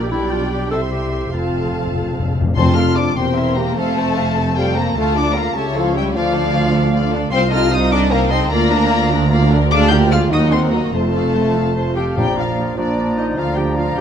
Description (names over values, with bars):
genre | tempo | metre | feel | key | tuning
quick classical-period movement for symphony orchestra | 100 BPM (dotted quarters) | 6/8 | straight | F major, Bb major from 7.3 s | A4 = 438 Hz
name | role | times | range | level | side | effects
muted chamber violin section | melody | 0.0-14.0 s | D5 to G6 | -24 LUFS | left 3 dB | none
mellow clarinet | second line | 0.0-2.3, 12.0-14.0 s | D4 to A4 | -25 LUFS | left 1 dB | none
muted chamber violin section | second line | 0.0-14.0 s | F4 to C6 | -24 LUFS | left 4 dB | none
muted chamber viola section | accompaniment | 0.0-14.0 s | F3 to C5 | -24 LUFS | right 3 dB | none
muted chamber cello section | bass | 0.0-14.0 s | C2 to D3 | -21 LUFS | right 2 dB | none
muted symphonic double bass section | bass | 0.0-14.0 s | E1 to Eb2 | -21 LUFS | right 3 dB | none
warm French horn section | sustained chords | 0.1-14.0 s | F3 to G4 | -21 LUFS | left 3 dB | none
timpani | percussion | 1.3-3.1, 12.2-12.7 s | F2 to Bb2 | -20 LUFS | left 2 dB | none
mellow oboe | second line | 12.2-14.0 s | D5 | -28 LUFS | right 2 dB | none
silver concert flute | second line | 12.2-14.0 s | Bb5 | -26 LUFS | left 3 dB | none
warm bassoon | accompaniment | 12.2-14.0 s | F3 | -25 LUFS | right 2 dB | none
room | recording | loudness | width
light reverb | close, detailed microphones | -14 LUFS | side -8 dB against mid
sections
0.0-2.6 A section; 2.6-12.2 B section; 12.2-14.0 A section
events
timpani fill 1.3-2.6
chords
0.1 G/B; 0.7 C; 1.3 F; 3.2 C7/E; 3.8 F; 5.0 Dm; 5.5 A7/C#; 6.1 Dm; 7.3 F7/C; 8.5 Bb/D; 9.7 Bb7/D; 10.3 Ebm; 10.9 F; 12.2 Bb; 13.4 Bb/D